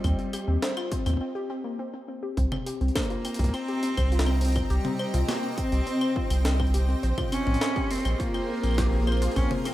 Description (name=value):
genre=IDM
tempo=103 BPM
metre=4/4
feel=straight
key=C minor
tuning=A4 = 441 Hz
part: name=rich cello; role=melody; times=0.0-9.7 s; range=G3 to Db4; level=-32 LUFS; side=equal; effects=tape echo
part: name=warbly dusty pluck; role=arpeggios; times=0.0-9.7 s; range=Bb3 to C5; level=-31 LUFS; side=left 2 dB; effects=chorus, tape echo
part: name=warm sub bass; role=bass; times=0.0-9.5 s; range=Bb1 to Eb2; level=-24 LUFS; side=equal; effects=none
part: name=electronic kick drum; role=drums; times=0.0-9.5 s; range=none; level=-32 LUFS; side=equal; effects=none
part: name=jungle sampler-style drum kit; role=drums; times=0.0-9.7 s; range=claves, hi-hat, snare drum, toms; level=-33 LUFS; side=equal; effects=overdrive
part: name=pulsing gated texture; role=texture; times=0.0-1.2 s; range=Eb5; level=-49 LUFS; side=right 4 dB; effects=none
part: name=granular cloud pad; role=sustained chords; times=3.3-9.7 s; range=Bb3 to C6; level=-33 LUFS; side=equal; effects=built-in reverb
room=light reverb, digital ambience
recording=rough home demo mix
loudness=-24 LUFS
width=side -14 dB against mid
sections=0.0-2.4 A section; 2.4-9.7 B section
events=break 1.2-2.4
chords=0.0 Eb; 2.4 Cm7; 7.0 Bbm7